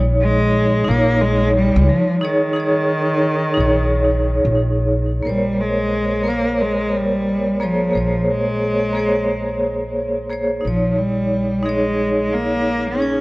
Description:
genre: trip hop.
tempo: 89 BPM.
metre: 4/4.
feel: swing 60% on 16ths.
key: Bb dorian.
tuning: A4 = 444 Hz.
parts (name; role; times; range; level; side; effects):
vibraphone with hard mallets; accompaniment; 0.0-13.2 s; Bb3 to Db5; -19 LUFS; equal; tremolo.
upright bass; bass; 0.0-13.2 s; Bb1 to Db2; -22 LUFS; equal; none.
rich cello; melody; 0.2-13.2 s; Eb3 to Db4; -20 LUFS; equal; tape echo.
room: moderate echo chamber reverb, RT60 1.8 s, small room ambience.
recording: worn, warbling old tape, cassette tape, warbly pitch drift.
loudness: -16 LUFS.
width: side -22 dB against mid.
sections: 0.0-5.3 A section; 5.3-13.2 B section.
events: filter sweep on vibraphone 0.0-5.3.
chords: 0.0 Dbsus2/Bb; 5.3 Bbm9; 10.6 Dbsus2/Bb.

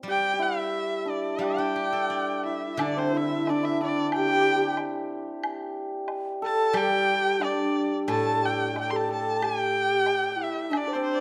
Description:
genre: chinese traditional, Chinese chamber ensemble.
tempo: 90 BPM.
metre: 2/4.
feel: rubato.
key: G zhi mode.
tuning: A4 = 440 Hz.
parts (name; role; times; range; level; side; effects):
hammered dulcimer; second line; 0.0-11.2 s; C4 to A4; -31 LUFS; equal; none.
steel-string zither; accompaniment; 0.0-10.1 s; A2 to D5; -37 LUFS; equal; none.
warm erhu; melody; 0.1-11.2 s; C5 to C6; -30 LUFS; equal; none.
mellow low xiao; second line; 2.4-11.2 s; D4 to C5; -32 LUFS; equal; none.
woodblock; percussion; 2.8-10.9 s; none; -38 LUFS; equal; none.
room: moderate recital hall reverb, RT60 1.4 s.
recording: none.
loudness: -26 LUFS.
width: mono.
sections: 0.0-2.8 A section; 2.8-11.2 B section.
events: none.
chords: none.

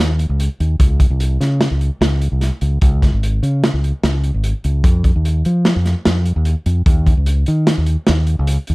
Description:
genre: progressive instrumental, band music in an uneven meter.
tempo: 148 BPM.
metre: 5/4.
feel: straight.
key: unclear.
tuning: A4 = 440 Hz.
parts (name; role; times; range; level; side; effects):
fingered electric bass; bass; 0.0-8.7 s; Ab1 to F3; -15 LUFS; equal; none.
crunchy breakbeat drum kit; drums; 0.2-8.7 s; hi-hat, kick drum, snare drum; -16 LUFS; equal; none.
room: little or no reverb.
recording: dark, warm production.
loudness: -14 LUFS.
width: side -23 dB against mid.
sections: 0.0-8.7 A section.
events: none.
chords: none.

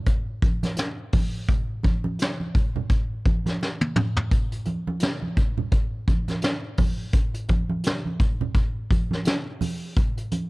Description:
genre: soul.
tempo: 85 BPM.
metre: 4/4.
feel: swing 58% on 16ths.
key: none.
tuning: none.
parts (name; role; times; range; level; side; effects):
vintage brush drum kit; drums; 0.1-10.5 s; hi-hat, kick drum, snare drum, toms; -23 LUFS; equal; none.
congas; percussion; 0.4-10.5 s; none; -29 LUFS; right 3 dB; none.
room: little or no reverb.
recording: dark, warm production.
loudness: -22 LUFS.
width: side -22 dB against mid.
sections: 0.0-10.5 A section.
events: drum fill 3.6-4.3.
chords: none.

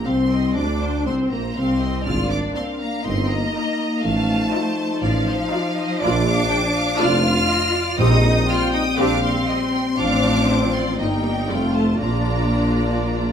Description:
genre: classical, dramatic, fast romantic movement for symphony orchestra.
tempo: 121 BPM.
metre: 4/4.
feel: rubato.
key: Bb major.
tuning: A4 = 440 Hz.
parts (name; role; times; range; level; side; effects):
bright symphonic violin section; melody; 0.0-13.3 s; F5 to F6; -27 LUFS; left 1 dB; none.
warm symphonic viola section; accompaniment; 0.0-13.3 s; A3 to G4; -26 LUFS; equal; none.
mellow French horn section; sustained chords; 0.0-13.3 s; F3 to Eb4; -24 LUFS; left 3 dB; none.
dark tuba; bass; 0.0-13.3 s; F1 to D2; -25 LUFS; right 3 dB; none.
rich symphonic cello section; bass; 0.0-13.3 s; F3 to F4; -26 LUFS; equal; none.
rich symphonic double bass section; bass; 0.0-13.3 s; F1 to D2; -25 LUFS; equal; none.
rich symphonic violin section; second line; 0.1-13.3 s; Bb4 to G5; -28 LUFS; equal; none.
timpani; percussion; 8.0-8.7, 12.0-12.8 s; Bb2; -23 LUFS; right 1 dB; none.
room: wet stone room reverb, RT60 1.0 s.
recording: none.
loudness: -17 LUFS.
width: side -8 dB against mid.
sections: 0.0-13.3 A section.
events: none.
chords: 0.1 Bbadd9; 2.1 Bb7/Ab; 3.1 Eb/G; 4.0 F7/A; 6.0 Bb; 8.0 Cm7/Bb; 10.0 F/A; 11.0 Eb/G; 11.5 F; 12.0 Bb.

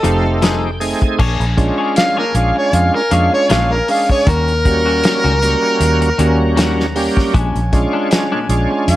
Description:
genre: straight-eighth soul blues.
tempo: 78 BPM.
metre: 4/4.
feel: swing 55% on 16ths.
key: unclear.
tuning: A4 = 440 Hz.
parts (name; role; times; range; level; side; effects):
mellow harmonica; melody; 0.0-9.0 s; A4 to F5; -16 LUFS; equal; overdrive.
bright tonewheel organ; accompaniment; 0.0-9.0 s; G3 to G#5; -18 LUFS; right 2 dB; slow rotary speaker, overdrive, chorus vibrato.
clean electric guitar; stabs; 0.0-8.7 s; Bb2 to C#5; -23 LUFS; left 4 dB; lush chorus, analog delay.
vintage muted fingered electric bass; bass; 0.0-9.0 s; F1 to F2; -17 LUFS; equal; none.
warm soul drum kit; drums; 0.0-9.0 s; crash cymbal, hi-hat, kick drum, snare drum; -18 LUFS; equal; none.
warm horn section; sustained chords; 1.2-9.0 s; C#5 to Bb5; -27 LUFS; equal; none.
room: light reverb, studio ambience.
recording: none.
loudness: -12 LUFS.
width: side -15 dB against mid.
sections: 0.0-1.2 A section; 1.2-9.0 B section.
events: tonewheel organ fill 0.0-1.2; harmonica solo 1.2-9.0.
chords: 0.0 F7#9; 1.2 Bb7#9; 4.3 Eb7#9; 7.3 Bb7#9.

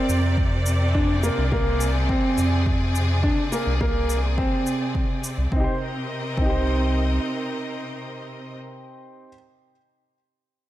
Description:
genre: piano and strings electronica.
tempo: 105 BPM.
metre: 4/4.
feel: straight.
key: C minor.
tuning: A4 = 441 Hz.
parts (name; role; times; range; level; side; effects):
clear symphonic string section; sustained chords; 0.0-8.6 s; C3 to Eb5; -28 LUFS; equal; sidechain pumping.
warm grand piano; riff; 0.0-9.3 s; Bb3 to C5; -26 LUFS; right 1 dB; digital delay.
round analog bass; bass; 0.1-7.2 s; C2 to F2; -22 LUFS; equal; sidechain pumping.
shaker; drums; 0.1-5.3 s; none; -34 LUFS; left 1 dB; overdrive, studio reverb.
electronic kick drum; drums; 0.4-6.5 s; none; -25 LUFS; equal; overdrive, studio reverb.
room: light reverb, studio ambience.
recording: none.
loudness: -20 LUFS.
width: side -14 dB against mid.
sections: 0.0-5.5 A section; 5.5-7.8 B section.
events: none.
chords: 0.0 Bb; 5.5 Cm7.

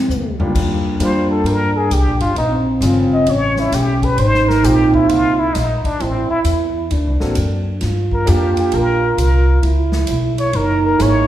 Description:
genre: jazz, small-group swing and bop.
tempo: 132 BPM.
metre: 4/4.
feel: swing 66% on 8ths.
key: Eb major.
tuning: A4 = 442 Hz.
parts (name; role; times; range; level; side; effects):
breathy trombone; second line; 0.0-11.3 s; C4 to F4; -19 LUFS; right 4 dB; none.
upright bass; bass; 0.1-11.3 s; Gb1 to G2; -18 LUFS; equal; none.
swinging big-band drum kit; drums; 0.1-11.1 s; crash cymbal, hi-hat, kick drum, ride cymbal, snare drum, toms; -26 LUFS; left 1 dB; none.
clear upright piano; accompaniment; 0.4-11.3 s; Eb2 to A4; -21 LUFS; left 1 dB; none.
trumpet with plunger mute; melody; 1.0-11.3 s; C4 to Eb5; -19 LUFS; left 2 dB; none.
room: wet recital hall reverb, RT60 1.3 s.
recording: recorded in a church or concert hall.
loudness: -13 LUFS.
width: side -12 dB against mid.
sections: 0.6-11.3 A section.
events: drum fill 0.0-0.6.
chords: 0.0 Bbadd9; 0.6 Ebmaj9; 2.4 Bbm7; 3.3 Aadd9; 4.2 Ab69; 6.0 A5; 6.9 D7b13; 7.8 Gm7; 9.6 Dbm7; 10.5 Gb13.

